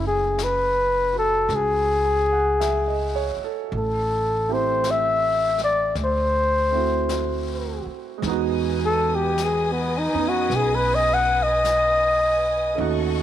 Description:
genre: jazz ballad.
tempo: 53 BPM.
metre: 4/4.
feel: swing 68% on 8ths.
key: unclear.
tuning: A4 = 440 Hz.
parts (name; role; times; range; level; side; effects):
mellow flugelhorn; melody; 0.0-13.2 s; B3 to F#5; -20 LUFS; left 2 dB; none.
warm baby grand piano; accompaniment; 0.0-13.2 s; G#3 to G#5; -29 LUFS; right 17 dB; none.
upright bass; bass; 0.0-13.2 s; F#1 to E#2; -28 LUFS; right 1 dB; none.
jazz brush drum kit; drums; 0.4-13.2 s; brushed snare drum, hi-hat, snare drum; -38 LUFS; left 9 dB; none.
rich studio string section; sustained chords; 8.3-13.2 s; A4 to D#6; -31 LUFS; left 2 dB; none.
room: light reverb, studio ambience.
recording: 1960s-style stereo with parts hard left and right.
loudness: -19 LUFS.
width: side -11 dB against mid.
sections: 0.0-13.2 A section.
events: flugelhorn solo 0.0-13.2.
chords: 0.0 F#m9; 3.7 Am7; 6.0 D9; 8.2 Emaj7.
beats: 0.39 1.50 2.62 | 3.73 4.84 5.96 7.09 | 8.23 9.37 10.51 11.65 | 12.78.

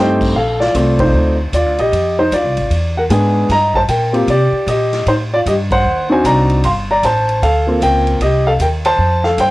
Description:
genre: jazz piano trio.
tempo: 153 BPM.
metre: 4/4.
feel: swing 64% on 8ths.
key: Bb major.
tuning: A4 = 440 Hz.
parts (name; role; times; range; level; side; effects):
dark concert grand piano; melody; 0.0-9.5 s; G#3 to C6; -13 LUFS; equal; cassette tape.
upright bass; bass; 0.0-9.5 s; G1 to C3; -17 LUFS; equal; transformer saturation.
swinging big-band drum kit; drums; 0.2-9.5 s; crash cymbal, hi-hat, kick drum, ride cymbal, snare drum; -25 LUFS; equal; cassette tape.
room: light reverb.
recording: home recording on cassette.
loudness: -12 LUFS.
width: side -18 dB against mid.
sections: 0.4-9.5 A section.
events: band accent 0.9, 5.7.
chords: 0.4 Bbmaj7; 1.9 Fm9; 2.7 E7; 3.5 Eb6; 5.1 A7(no3); 5.8 Cm9b5; 6.6 Gm11; 8.2 Cm; 9.0 Fadd9.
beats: | 0.36 0.75 1.14 1.53 | 1.93 2.32 2.71 3.10 | 3.50 3.89 4.28 4.67 | 5.06 5.46 5.85 6.24 | 6.63 7.03 7.42 7.81 | 8.20 8.59 8.99 9.38.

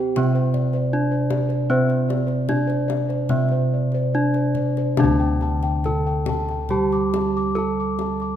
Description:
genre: Javanese gamelan.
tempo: 70-80 BPM.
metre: 4/4.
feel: straight.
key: unclear.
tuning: A4 = 439 Hz.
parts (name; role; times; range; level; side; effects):
gamelan-type bronze metallophone; melody; 0.0-8.4 s; C4-25c to A4; -25 LUFS; equal; none.
gamelan-type bronze metallophone; accompaniment; 0.0-8.4 s; C3-25c to C4-25c; -24 LUFS; right 2 dB; none.
gamelan-type bossed gongs; arpeggios; 0.0-8.4 s; C5-25c to D6; -29 LUFS; left 5 dB; none.
gamelan-type bronze metallophone; arpeggios; 0.0-5.0 s; C5-25c to D5; -30 LUFS; right 6 dB; none.
gamelan-type bossed gongs; bass; 0.0-8.4 s; D2 to C5-25c; -25 LUFS; equal; none.
kendang; percussion; 0.2-8.3 s; none; -29 LUFS; left 6 dB; none.
room: moderate concert hall reverb, RT60 1.8 s.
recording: minimal, uncompressed stereo recording.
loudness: -19 LUFS.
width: side -10 dB against mid.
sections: 0.0-5.0 A section; 5.0-8.4 B section.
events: none.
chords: none.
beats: 0.17 0.93 | 1.71 2.50 3.31 4.14 | 4.99 5.85 6.71 7.56.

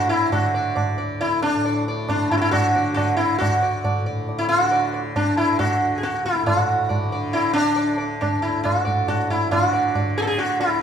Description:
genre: indian classical, Hindustani.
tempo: 137 BPM.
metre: 7/4.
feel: straight.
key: unclear.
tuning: A4 = 438 Hz.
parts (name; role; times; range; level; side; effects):
sitar; melody; 0.0-10.8 s; D4 to D5; -20 LUFS; equal; none.
tanpura; drone; 0.0-10.8 s; D2 to D3; -28 LUFS; right 1 dB; none.
tabla; percussion; 0.1-10.8 s; none; -25 LUFS; right 2 dB; none.
room: moderate recital hall reverb, RT60 1.5 s.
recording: minimal, uncompressed stereo recording.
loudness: -19 LUFS.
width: side -8 dB against mid.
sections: 0.0-10.8 A section.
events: none.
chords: none.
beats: | 0.32 0.76 1.20 1.64 2.08 2.52 2.96 | 3.40 3.84 4.28 4.72 5.16 5.59 6.03 | 6.46 6.90 7.34 7.77 8.21 8.64 9.07 | 9.51 9.94 10.37 10.80.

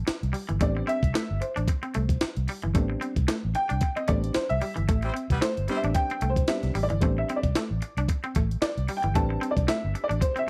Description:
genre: funk.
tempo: 112 BPM.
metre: 4/4.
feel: swing 56% on 16ths.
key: A minor.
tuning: A4 = 438 Hz.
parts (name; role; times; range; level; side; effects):
dark upright piano; stabs; 0.0-10.5 s; G3 to A5; -32 LUFS; equal; none.
twangy electric guitar; riff; 0.1-10.5 s; E3 to D4; -36 LUFS; equal; none.
vintage muted fingered electric bass; bass; 0.1-10.2 s; G1 to C2; -30 LUFS; equal; none.
breakbeat sampler-style drum kit; drums; 0.1-10.5 s; hi-hat, kick drum, snare drum; -30 LUFS; equal; none.
warm horn section; second line; 5.0-5.8 s; G3 to C5; -37 LUFS; equal; none.
room: digital ambience.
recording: dry, close 1970s-style studio recording.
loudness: -27 LUFS.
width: mono.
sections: 0.0-10.5 A section.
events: upright piano solo 0.0-10.5; band accent 4.9-7.0.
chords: 0.0 Am11.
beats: 0.08 | 0.61 1.15 1.68 2.22 | 2.75 3.29 3.82 4.36 | 4.89 5.42 5.96 6.49 | 7.03 7.56 8.09 8.62 | 9.16 9.69 10.22.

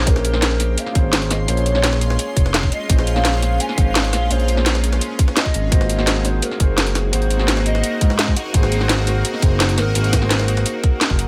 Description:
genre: liquid drum and bass.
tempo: 170 BPM.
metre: 4/4.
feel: straight.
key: Bb minor.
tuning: A4 = 442 Hz.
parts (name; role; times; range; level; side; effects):
hollow clarinet-like synth lead; melody; 0.0-11.3 s; Ab4 to Ab5; -29 LUFS; equal; lush chorus, digital delay.
dark grand piano; accompaniment; 0.0-11.3 s; Bb3 to Db5; -28 LUFS; equal; none.
shimmering ambient pad; sustained chords; 0.2-11.3 s; Ab3 to C6; -30 LUFS; equal; chorus, built-in reverb, phaser, sidechain pumping.
smooth synth bass; bass; 0.0-11.3 s; F1 to Ab2; -22 LUFS; equal; none.
drum and bass drum kit; drums; 0.1-11.3 s; hi-hat, snare drum; -24 LUFS; equal; none.
electronic kick drum; drums; 0.1-11.2 s; none; -18 LUFS; equal; none.
jungle sampler-style drum kit; drums; 0.1-11.3 s; hi-hat, snare drum; -28 LUFS; equal; high-pass filter on hats, high-pass filter on snare.
room: little or no reverb.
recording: none.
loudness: -18 LUFS.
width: mono.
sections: 0.0-11.3 A section.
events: band accent 11.0.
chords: 0.0 Bbm9; 5.7 Ab9.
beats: | 0.07 0.42 0.78 1.13 | 1.48 1.84 2.19 2.54 | 2.90 3.25 3.60 3.95 | 4.31 4.66 5.01 5.37 | 5.72 6.07 6.42 6.78 | 7.13 7.48 7.84 8.19 | 8.54 8.89 9.25 9.60 | 9.95 10.31 10.66 11.01.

